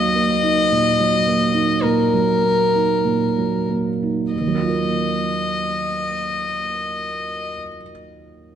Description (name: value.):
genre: neoclassical piano and strings.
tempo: 45-55 BPM.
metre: 4/4.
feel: rubato.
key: Eb minor.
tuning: A4 = 440 Hz.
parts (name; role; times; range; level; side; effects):
rich violin; melody; 0.0-7.5 s; Bb4 to Eb5; -20 LUFS; left 3 dB; none.
felt-muted upright piano; accompaniment; 0.0-8.6 s; Eb2 to Bb4; -21 LUFS; right 5 dB; none.
room: wet concert hall reverb, RT60 2.0 s.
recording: dark, warm production.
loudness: -17 LUFS.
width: side -9 dB against mid.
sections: 0.0-4.3 A section; 4.3-8.6 B section.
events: slowing down 0.0-4.3.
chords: 0.0 Ebm; 4.3 Ebmadd9.